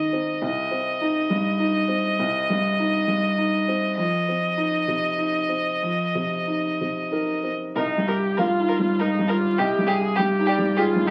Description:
neoclassical piano and strings; 89-102 BPM; 3/4; rubato; C minor; A4 = 441 Hz
rich violin; melody; 0.0-11.1 s; G4 to Eb5; -27 LUFS; equal
felt-muted upright piano; accompaniment; 0.0-11.1 s; C2 to F5; -26 LUFS; equal
clear viola; accompaniment; 7.8-11.1 s; Eb4 to Ab4; -26 LUFS; equal
moderate studio ambience, RT60 0.4 s; very old 78 rpm record, vinyl crackle; -23 LUFS; mono
0.0-7.8 A section; 7.8-11.1 B section
0.4 Cm; 4.0 F5; 7.8 Cm7; 9.6 Abmaj7/C

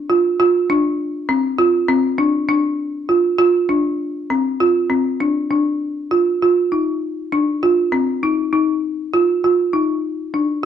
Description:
progressive instrumental, progressive; 99 BPM; 5/4; straight; A4 = 442 Hz
folk marimba with hard mallets; solo; 0.1-10.6 s; C4 to F4; -15 LUFS; equal
moderate studio reverb, RT60 0.9 s; worn, warbling old tape, cassette tape, warbly pitch drift; -15 LUFS; side -9 dB against mid
0.0-4.6 A section; 4.6-10.7 B section

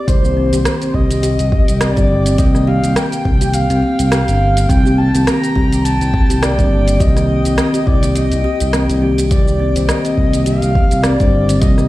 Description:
organic downtempo; 104 BPM; 4/4; swing 56% on 16ths; C minor; A4 = 440 Hz
breathy flute-like synth lead; melody; 0.0-11.9 s; C5 to Bb5; -21 LUFS; left 1 dB; tremolo, lush chorus, digital delay
smooth synth bass; bass; 0.1-11.9 s; G1 to C2; -16 LUFS; equal
deep house drum kit; drums; 0.1-11.9 s; hi-hat, rim click, shaker; -23 LUFS; right 1 dB; overdrive
electronic kick drum; drums; 0.1-11.7 s; -15 LUFS; equal; overdrive
drifting glass-harmonics texture; texture; 0.8-11.9 s; G5; -32 LUFS; left 2 dB; chorus, built-in reverb
muted felt-like synth keys; accompaniment; 0.2-11.9 s; Eb3 to G4; -22 LUFS; equal; chorus, sidechain pumping, digital delay
kalimba; arpeggios; 0.4-11.7 s; Bb3 to C5; -19 LUFS; equal; digital delay
light reverb, digital ambience; played on a big sound system in a bare room, large studio reverb; -12 LUFS; side -17 dB against mid
0.1-11.9 A section
0.1 Cm7

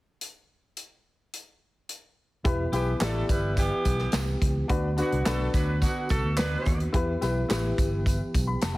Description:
uptempo 1960s-style soul; 107 BPM; 4/4; straight; E minor; A4 = 445 Hz
natural country drum kit; drums; 0.2-8.8 s; hi-hat, kick drum, snare drum; -28 LUFS; equal
clear upright piano; accompaniment; 2.4-8.8 s; D4 to B5; -31 LUFS; left 3 dB
percussive tonewheel organ; sustained chords; 2.4-8.8 s; D3 to G4; -35 LUFS; right 1 dB; chorus vibrato, slow rotary speaker
fingered electric bass; bass; 2.4-8.8 s; E1 to E2; -28 LUFS; equal
clear saxophone section; second line; 2.7-6.8 s; D3 to B4; -32 LUFS; right 1 dB
tambourine and handclaps; percussion; 2.7-8.8 s; -40 LUFS; right 2 dB
light reverb, small room reverb; heavily compressed radio sound, multiband compression; -24 LUFS; side -19 dB against mid
0.2-2.5 A section; 2.5-8.8 B section
0.2 N.C.; 2.5 Em; 4.7 Bm; 6.9 Em

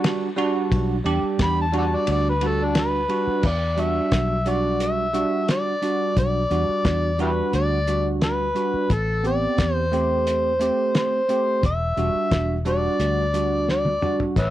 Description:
straight-eighth soul blues; 88 BPM; 4/4; straight; E minor; A4 = 438 Hz
bell-like tine electric piano; accompaniment; 0.0-14.4 s; G3 to G4; -25 LUFS; right 3 dB; analog chorus
cloth-damped thuddy drum kit; drums; 0.0-14.5 s; crash cymbal, hi-hat, kick drum, ride cymbal, snare drum, toms; -26 LUFS; left 1 dB
vintage muted fingered electric bass; bass; 0.7-14.5 s; E1 to E2; -25 LUFS; left 1 dB
overdriven harmonica; melody; 1.4-14.5 s; D4 to B5; -23 LUFS; left 1 dB
little or no reverb; dry, close 1970s-style studio recording; -20 LUFS; side -13 dB against mid
0.0-3.4 A section; 3.4-14.5 B section
harmonica solo 0.0-3.4; drum fill 13.7-14.4
0.0 Em7; 8.9 Am7; 11.6 Em7

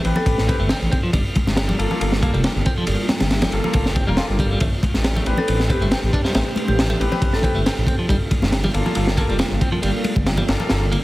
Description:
breakbeat, breaks; 138 BPM; 4/4; straight; A4 = 441 Hz
dark analog pad; sustained chords; 0.0-11.0 s; G3 to C5; -29 LUFS; right 1 dB; chorus, sidechain pumping
clear grand piano; stabs; 0.0-10.8 s; Bb3 to B4; -27 LUFS; left 3 dB; tape echo
dark detuned saw bass; bass; 0.0-11.0 s; F1 to A1; -22 LUFS; equal
crunchy breakbeat drum kit; drums; 0.0-11.0 s; kick drum, ride cymbal, snare drum; -20 LUFS; equal
marimba with hard mallets; melody; 0.2-0.3, 5.4-7.5 s; G4 to A4; -28 LUFS; equal; telephone sound, vintage 12-bit sampler grit, tape echo
congas; percussion; 0.2-10.7 s; -26 LUFS; left 1 dB
clean electric guitar; riff; 0.5-11.0 s; F3 to F4; -27 LUFS; equal; tube saturation, tremolo, tape echo
light reverb; heavily compressed radio sound; -17 LUFS; side -18 dB against mid
0.0-11.0 A section
0.0 Am9; 0.9 Gm9; 4.6 Am9; 7.9 Gm9

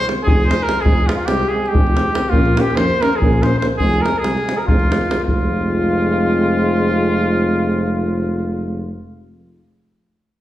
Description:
balkan folk, Balkan brass band; 285 BPM (eighths); 7/8; straight; F minor; A4 = 440 Hz
warm trumpet; melody; 0.0-9.0 s; F4 to C5; -21 LUFS; equal
mellow flugelhorn; second line; 0.0-9.0 s; F4 to C5; -24 LUFS; left 2 dB
dark euphonium; accompaniment; 0.1-9.0 s; Ab3 to Bb3; -24 LUFS; right 3 dB
mellow French horn; accompaniment; 0.1-9.0 s; C4 to Db4; -27 LUFS; left 4 dB
davul; percussion; 0.1-5.5 s; -18 LUFS; equal
dark tuba; bass; 0.3-9.0 s; F1 to F2; -20 LUFS; equal
wet recital hall reverb, RT60 1.5 s; heard from further back in the room; -14 LUFS; side -14 dB against mid
0.0-5.3 A section; 5.3-8.2 B section
0.0 Fm; 2.3 Bbm; 3.8 Fm

